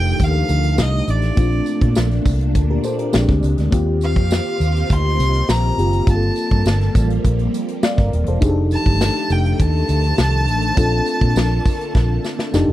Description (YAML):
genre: polished 1980s jazz-funk pop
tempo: 102 BPM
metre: 4/4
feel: straight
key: Bb major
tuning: A4 = 440 Hz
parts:
  - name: rich violin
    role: melody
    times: 0.0-12.5 s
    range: D5 to C6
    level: -24 LUFS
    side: equal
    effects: slapback echo
  - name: FM electric piano with soft pad layer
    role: accompaniment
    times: 0.0-12.7 s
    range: Ab3 to F5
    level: -23 LUFS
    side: left 1 dB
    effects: tremolo, lush chorus
  - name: phased string machine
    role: sustained chords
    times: 0.0-12.7 s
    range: Bb2 to G4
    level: -26 LUFS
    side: equal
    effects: ensemble chorus, phaser
  - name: vintage muted fingered electric bass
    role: bass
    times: 0.0-12.7 s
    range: Eb1 to Bb2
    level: -18 LUFS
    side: equal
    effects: none
  - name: modern studio drum kit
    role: drums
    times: 0.1-12.7 s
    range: hi-hat, kick drum, snare drum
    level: -18 LUFS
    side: equal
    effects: none
  - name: tambourine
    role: percussion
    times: 0.5-12.7 s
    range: none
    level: -38 LUFS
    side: right 10 dB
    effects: none
room: little or no reverb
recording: dry, close 1970s-style studio recording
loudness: -15 LUFS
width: side -14 dB against mid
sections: 0.0-12.7 A section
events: drum fill 12.0-12.7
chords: 0.0 F13; 1.4 Bbmaj7; 3.1 Bb13; 3.7 Eb69; 6.1 Gm11; 8.4 F13; 10.8 Bbmaj7